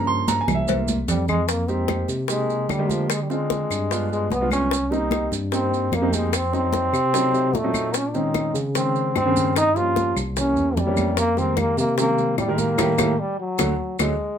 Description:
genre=Afro-Cuban jazz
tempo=149 BPM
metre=4/4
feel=straight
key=F minor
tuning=A4 = 440 Hz
part: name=warm grand piano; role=accompaniment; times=0.0-14.1 s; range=Db3 to C6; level=-26 LUFS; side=right 1 dB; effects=none
part: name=tine electric piano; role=bass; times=0.0-14.1 s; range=C2 to D3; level=-26 LUFS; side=equal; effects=fast tremolo
part: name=congas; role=percussion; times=0.1-14.1 s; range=none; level=-29 LUFS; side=equal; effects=none
part: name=cowbell and bongos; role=percussion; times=0.3-14.1 s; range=none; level=-29 LUFS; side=left 8 dB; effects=none
part: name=maracas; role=percussion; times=0.3-14.1 s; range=none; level=-33 LUFS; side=right 8 dB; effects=none
part: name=claves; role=percussion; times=0.5-14.1 s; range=none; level=-31 LUFS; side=left 8 dB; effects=none
part: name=clear trombone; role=melody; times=1.1-14.4 s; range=F3 to F4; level=-23 LUFS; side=equal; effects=none
room=moderate club reverb, RT60 0.5 s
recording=minimal, uncompressed stereo recording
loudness=-19 LUFS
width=side -8 dB against mid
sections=0.0-1.5 A section; 1.5-14.4 B section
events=grand piano solo 0.0-1.5; drum fill 0.7-1.5, 13.8-14.4; band accent 12.8-14.4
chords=0.0 Gm7b5; 0.7 C7b13; 1.5 Fm11; 3.1 Dm7b5; 3.9 G7b9; 4.7 Cm7; 6.3 F7b9; 7.9 Bbm11; 9.6 Gm7b5; 10.4 C7b9; 11.2 Fm11; 12.8 Gmadd9/A; 13.6 D

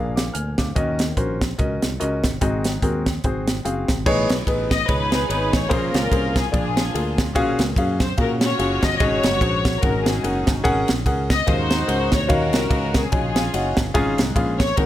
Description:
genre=uptempo gospel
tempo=146 BPM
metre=4/4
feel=swing 57% on 8ths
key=unclear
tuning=A4 = 441 Hz
part: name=warm grand piano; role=accompaniment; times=0.0-14.9 s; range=Ab2 to F6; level=-24 LUFS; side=left 1 dB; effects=none
part: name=fingered electric bass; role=bass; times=0.0-14.9 s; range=Gb1 to Bb2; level=-26 LUFS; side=equal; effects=none
part: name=crisp fusion drum kit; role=drums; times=0.2-14.9 s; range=crash cymbal, hi-hat, kick drum, ride cymbal, snare drum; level=-22 LUFS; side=right 1 dB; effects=none
part: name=warm studio string section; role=melody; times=4.7-14.9 s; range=Db4 to D#5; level=-23 LUFS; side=left 2 dB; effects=none
room=light reverb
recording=none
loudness=-18 LUFS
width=side -13 dB against mid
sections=0.0-4.1 A section; 4.1-14.9 B section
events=none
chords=0.0 Bb7; 0.8 Ebm7; 2.4 Ab7; 4.1 Amaj9#11; 5.7 Bbm9; 6.5 Bb7; 7.4 Gbmaj9; 9.0 Ab7sus4; 9.8 Ab9sus4; 12.3 Ebm9; 13.9 Db/Ab

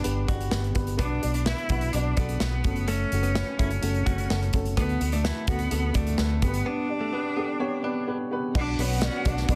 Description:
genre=piano-driven pop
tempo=127 BPM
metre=4/4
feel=straight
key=unclear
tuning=A4 = 442 Hz
part: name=bright cello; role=melody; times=0.0-9.6 s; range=A3 to E4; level=-33 LUFS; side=equal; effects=none
part: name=dark upright piano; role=accompaniment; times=0.0-9.6 s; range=G2 to D5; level=-34 LUFS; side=equal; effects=none
part: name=modern studio drum kit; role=drums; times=0.0-9.6 s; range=crash cymbal, hi-hat, kick drum, snare drum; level=-31 LUFS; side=equal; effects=none
part: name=vintage muted fingered electric bass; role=bass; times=0.1-9.6 s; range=F#1 to D2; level=-30 LUFS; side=equal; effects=none
part: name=direct-recorded clean electric guitar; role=riff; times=0.3-8.2 s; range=A3 to F#4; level=-37 LUFS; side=equal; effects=none
part: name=tonewheel organ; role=sustained chords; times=8.5-9.6 s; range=none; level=barely audible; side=none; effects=none
part: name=warm studio violin section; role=second line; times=8.6-9.6 s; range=F#4 to F#5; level=-38 LUFS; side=equal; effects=none
room=little or no reverb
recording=dense, heavily limited modern master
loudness=-26 LUFS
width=mono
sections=0.0-8.6 A section; 8.6-9.6 B section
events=break 6.7-8.6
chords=0.0 G; 1.0 Bm; 2.6 F#m; 4.8 D; 6.4 G; 8.6 Bm

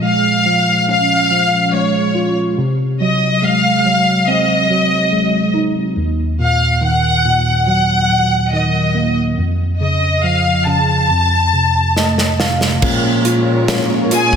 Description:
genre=pop ballad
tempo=70 BPM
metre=4/4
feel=straight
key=Bb minor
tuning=A4 = 444 Hz
part: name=warm symphonic violin section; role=melody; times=0.0-14.4 s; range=Ab4 to A5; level=-15 LUFS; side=left 1 dB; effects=slapback echo
part: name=barky tine electric piano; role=accompaniment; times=0.0-14.4 s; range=Eb2 to F5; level=-16 LUFS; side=right 1 dB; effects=ensemble chorus
part: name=modern studio drum kit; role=drums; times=12.0-14.4 s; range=crash cymbal, hi-hat, kick drum, snare drum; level=-17 LUFS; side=equal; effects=none
part: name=warm symphonic string section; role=sustained chords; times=12.8-14.4 s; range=Ab3 to Db5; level=-23 LUFS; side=left 2 dB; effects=none
part: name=fingerpicked steel-string acoustic guitar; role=arpeggios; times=12.8-14.4 s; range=Bb2 to F4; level=-21 LUFS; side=left 6 dB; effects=slapback echo
part: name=muted symphonic cello section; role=bass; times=12.8-14.4 s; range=Bb2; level=-20 LUFS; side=equal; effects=none
room=moderate concert hall reverb, RT60 2.2 s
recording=big arena sound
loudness=-12 LUFS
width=side -7 dB against mid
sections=0.0-12.8 A section; 12.8-14.4 B section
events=tine electric piano fill 11.5-12.8; drum fill 12.0-12.8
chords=0.0 Bbm7; 2.6 Ab7/C; 6.0 Ebm; 9.4 Faug7; 11.1 F; 12.8 Bbm7

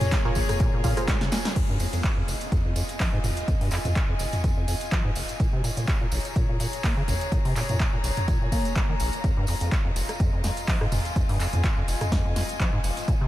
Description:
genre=acid house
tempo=125 BPM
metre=4/4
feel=swing 55% on 16ths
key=F minor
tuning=A4 = 440 Hz
part: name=warbly tape-like pad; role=sustained chords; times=0.0-1.6 s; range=Bb3 to Bb4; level=-42 LUFS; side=left 5 dB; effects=none
part: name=acid bass, square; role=riff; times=0.0-13.3 s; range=F1 to Bb3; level=-29 LUFS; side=equal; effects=tube saturation, sidechain pumping, tape echo
part: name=electro analog drum machine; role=drums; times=0.0-13.2 s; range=crash cymbal, handclaps, hi-hat, rim click, snare drum, toms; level=-30 LUFS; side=equal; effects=none
part: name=tambourine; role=percussion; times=0.0-13.2 s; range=none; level=-39 LUFS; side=right 3 dB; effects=none
part: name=rich studio string section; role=texture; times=0.0-13.3 s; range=F4 to Bb5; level=-34 LUFS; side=left 3 dB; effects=sidechain pumping
part: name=electronic kick drum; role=drums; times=0.1-13.2 s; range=none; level=-26 LUFS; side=equal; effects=none
part: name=filtered dub chord stab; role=stabs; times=0.3-1.1 s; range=F4 to F5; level=-37 LUFS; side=right 2 dB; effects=none
room=light reverb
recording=none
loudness=-22 LUFS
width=side -15 dB against mid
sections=0.0-1.6 A section; 1.6-13.3 B section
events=drop 0.0-1.6; drum fill 1.1-1.6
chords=0.0 Bbm7; 1.6 Fm7; 5.4 Bbm7; 9.2 Fm7

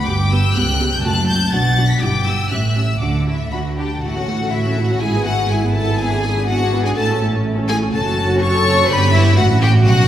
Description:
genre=quick classical-period movement for string orchestra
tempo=123 BPM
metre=2/4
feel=straight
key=D major, A major from 4.0 s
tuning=A4 = 438 Hz
part: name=clear studio violin section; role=melody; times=0.0-10.1 s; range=E5 to B6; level=-21 LUFS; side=left 4 dB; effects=none
part: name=warm studio violin section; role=second line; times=0.0-10.1 s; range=E4 to B5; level=-23 LUFS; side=left 1 dB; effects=none
part: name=dark symphonic viola section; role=accompaniment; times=0.1-10.1 s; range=F#3 to A4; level=-24 LUFS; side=right 1 dB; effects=none
part: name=dark symphonic double bass section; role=bass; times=0.1-10.1 s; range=F#1 to D2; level=-18 LUFS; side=right 1 dB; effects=none
part: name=warm symphonic cello section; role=bass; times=0.1-10.1 s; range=C#2 to A4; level=-23 LUFS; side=right 1 dB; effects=none
room=wet concert hall reverb, RT60 2.3 s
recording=recorded in a church or concert hall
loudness=-14 LUFS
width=side -11 dB against mid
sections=0.0-4.0 A section; 4.0-10.1 B section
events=none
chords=0.1 G; 0.6 Gmaj7#11/C#; 1.0 F#m; 1.5 Bm7; 2.0 Em7/G; 2.5 A7; 3.0 D; 4.0 A; 5.0 E/G#; 6.0 E7/G#; 7.0 A; 7.9 F#m; 8.9 G; 9.4 A

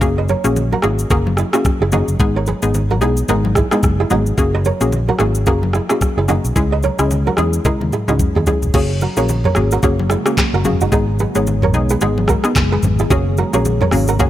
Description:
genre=afrobeats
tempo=110 BPM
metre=4/4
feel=swing 58% on 16ths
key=F# mixolydian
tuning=A4 = 440 Hz
part: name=hollow square pluck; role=accompaniment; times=0.0-14.3 s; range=G#3 to G#4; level=-20 LUFS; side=left 3 dB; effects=chorus
part: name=fingered electric bass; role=bass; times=0.0-14.3 s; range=E1 to E2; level=-18 LUFS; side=equal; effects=none
part: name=afro-pop drum kit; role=drums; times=0.0-14.3 s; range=crash cymbal, handclaps, hi-hat, kick drum, rim click, shaker, toms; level=-19 LUFS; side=equal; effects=none
part: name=kora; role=riff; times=0.2-14.3 s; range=C#4 to D#5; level=-21 LUFS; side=right 6 dB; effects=digital delay
part: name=congas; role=percussion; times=0.3-14.3 s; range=none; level=-26 LUFS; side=left 2 dB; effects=none
part: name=glassy FM pad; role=sustained chords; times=9.5-14.3 s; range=C#3 to G#4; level=-26 LUFS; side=left 1 dB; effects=ensemble chorus, built-in reverb
room=digital ambience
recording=none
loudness=-14 LUFS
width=side -13 dB against mid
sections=0.0-8.7 A section; 8.7-14.3 B section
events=drum fill 7.7-8.7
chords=0.0 F#add9; 6.6 C#m; 8.7 F#add9

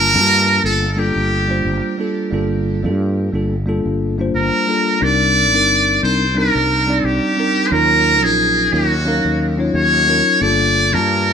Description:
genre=sunset chillout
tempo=89 BPM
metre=4/4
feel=swing 54% on 16ths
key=G minor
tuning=A4 = 436 Hz
part: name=trumpet with metal mute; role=melody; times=0.0-11.3 s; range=Gb4 to D5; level=-15 LUFS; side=right 1 dB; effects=tape echo
part: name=bell-like tine electric piano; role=accompaniment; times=0.0-11.3 s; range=Gb3 to A5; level=-19 LUFS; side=moving between left 6 dB and right 3 dB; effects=auto-pan, digital delay
part: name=fretless electric bass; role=bass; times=0.0-11.3 s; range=G1 to G2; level=-20 LUFS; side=equal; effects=tube saturation
room=wet studio ambience, RT60 0.5 s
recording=rough home demo mix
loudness=-13 LUFS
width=side -7 dB against mid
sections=0.0-11.3 A section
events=none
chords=0.0 Gm9; 5.0 Cm9; 7.7 Ebm9; 10.4 Gm9

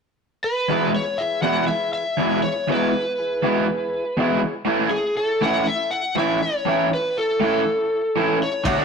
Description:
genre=garage rock duo or trio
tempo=121 BPM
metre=4/4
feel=straight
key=E major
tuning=A4 = 444 Hz
part: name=overdriven slide guitar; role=melody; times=0.4-8.8 s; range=G#4 to F#5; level=-22 LUFS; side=left 1 dB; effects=none
part: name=overdriven combo organ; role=sustained chords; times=0.7-8.8 s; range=E4 to E5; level=-34 LUFS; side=left 3 dB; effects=none
part: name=raw garage guitar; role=riff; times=0.7-8.8 s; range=E2 to F#4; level=-21 LUFS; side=right 1 dB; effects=overdrive
part: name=cloth-damped thuddy drum kit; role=drums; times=8.7-8.8 s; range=kick drum, ride cymbal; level=-24 LUFS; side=equal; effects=none
room=moderate stone room reverb, RT60 1.1 s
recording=rough rehearsal-room recording, tube saturation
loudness=-19 LUFS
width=side -5 dB against mid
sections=0.7-8.8 A section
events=none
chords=0.0 N.C.; 0.7 E; 4.7 A

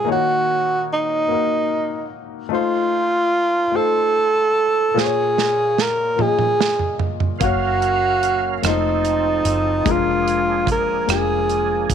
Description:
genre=slow gospel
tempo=49 BPM (dotted quarters)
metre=6/8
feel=straight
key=Bb minor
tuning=A4 = 440 Hz
part: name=breathy tenor saxophone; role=melody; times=0.0-11.9 s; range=Eb4 to Bb4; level=-18 LUFS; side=right 2 dB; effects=none
part: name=warm concert grand piano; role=accompaniment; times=0.0-11.9 s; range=Bb2 to F5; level=-24 LUFS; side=left 14 dB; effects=none
part: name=modern studio drum kit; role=drums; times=5.0-11.9 s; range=hi-hat, kick drum, rim click, snare drum, toms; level=-23 LUFS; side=right 6 dB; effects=none
part: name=tonewheel organ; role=sustained chords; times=7.4-11.9 s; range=F3 to F5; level=-26 LUFS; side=right 13 dB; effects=slow rotary speaker, overdrive, chorus vibrato
part: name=fingered electric bass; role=bass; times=7.4-11.9 s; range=F1 to Gb1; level=-26 LUFS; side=right 1 dB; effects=none
room=light reverb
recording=1960s-style stereo with parts hard left and right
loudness=-16 LUFS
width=side -8 dB against mid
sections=0.0-11.9 A section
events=drum fill 5.0-7.4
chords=0.1 Ebm7; 2.5 F7; 5.0 Bbm7; 7.4 Gbmaj7; 8.6 F7; 9.9 Bb7/F

